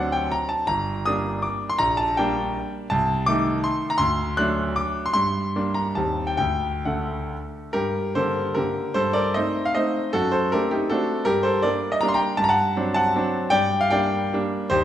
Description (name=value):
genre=classical, romantic triple-time dance for piano with dotted rhythms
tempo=121-173 BPM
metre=3/4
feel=rubato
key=G minor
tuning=A4 = 440 Hz
part: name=clear concert grand piano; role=solo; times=0.0-14.8 s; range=G1 to F#6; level=-20 LUFS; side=equal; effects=none
room=wet recital hall reverb, RT60 1.4 s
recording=recorded in a church or concert hall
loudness=-20 LUFS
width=side -11 dB against mid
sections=0.0-7.7 A section; 7.7-14.8 B section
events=none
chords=0.0 D7; 0.7 Gm; 1.8 Gm/Bb; 2.9 Adim/C; 4.0 D7; 5.2 Gm; 6.0 Cm/Eb; 6.4 D; 7.7 Gm; 9.0 Am7b5/G; 10.1 D7/F#; 11.3 Gm; 12.4 D7/G; 13.5 Gm